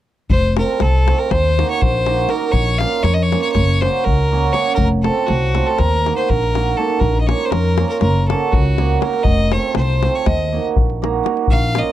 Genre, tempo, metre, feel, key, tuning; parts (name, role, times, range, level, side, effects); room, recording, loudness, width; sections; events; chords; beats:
balkan folk, Balkan wedding band; 241 BPM (eighths); 9/8; straight; A4 = 439 Hz
bright fiddle; melody; 0.3-11.9 s; Gb4 to F5; -20 LUFS; left 1 dB
upright bass; bass; 0.3-11.8 s; F1 to F2; -17 LUFS; left 1 dB
davul; percussion; 0.3-11.9 s; -20 LUFS; left 2 dB
cimbalom; accompaniment; 0.6-11.9 s; A3 to Bb4; -20 LUFS; right 8 dB
light reverb; dry, close 1970s-style studio recording; -14 LUFS; side -13 dB against mid
0.3-11.9 A section
0.3 F; 1.3 Ebm; 2.5 Bbm; 3.5 Gb; 4.8 F; 5.8 Ebm; 7.0 Bbm; 8.0 Gb; 9.3 F; 10.2 Ebm
| 0.29 0.54 0.79 1.04 1.29 1.54 1.79 2.04 2.29 | 2.53 2.78 3.03 3.28 3.53 3.78 4.03 4.28 4.52 | 4.77 5.02 5.27 5.52 5.77 6.02 6.26 6.51 6.76 | 7.01 7.26 7.51 7.76 8.01 8.26 8.50 8.75 9.00 | 9.25 9.50 9.75 10.00 10.25 10.49 10.74 10.99 11.24 | 11.49 11.74